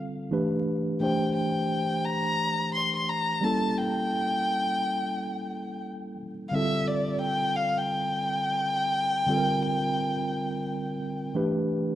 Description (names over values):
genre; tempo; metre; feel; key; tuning
R&B; 87 BPM; 4/4; swing 63% on 16ths; G dorian; A4 = 440 Hz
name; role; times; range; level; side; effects
tine electric piano; accompaniment; 0.0-12.0 s; D3 to C5; -28 LUFS; right 1 dB; medium stereo tremolo
dark violin; melody; 1.0-11.3 s; D5 to C6; -28 LUFS; left 1 dB; slapback echo
room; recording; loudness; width
light reverb, small room ambience; dark, warm production, vinyl crackle; -25 LUFS; side -12 dB against mid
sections
0.0-12.0 A section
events
none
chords
0.3 G69; 1.0 C9; 3.4 A7b9; 6.5 Dm7; 9.3 Gm7; 11.3 G69